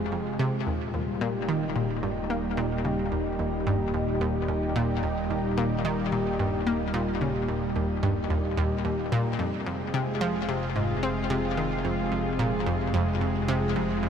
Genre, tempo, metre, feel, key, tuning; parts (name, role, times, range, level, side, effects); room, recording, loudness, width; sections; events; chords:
ambient, sequencer-driven space music; 110 BPM; 4/4; straight; A4 = 440 Hz
lush unison pad; sustained chords; 0.0-14.1 s; Bb2 to Ab4; -28 LUFS; equal; chorus, shimmer reverb
fat analog bass; bass; 0.0-14.1 s; Eb1 to F1; -35 LUFS; equal
analog pluck; riff; 0.1-14.1 s; Eb2 to C4; -28 LUFS; equal; chorus, ping-pong delay, shimmer reverb
wet huge ambient reverb, RT60 7.8 s; -25 LUFS; side -8 dB against mid
0.0-14.1 A section
0.0 Fm; 0.7 Eb; 9.4 Fm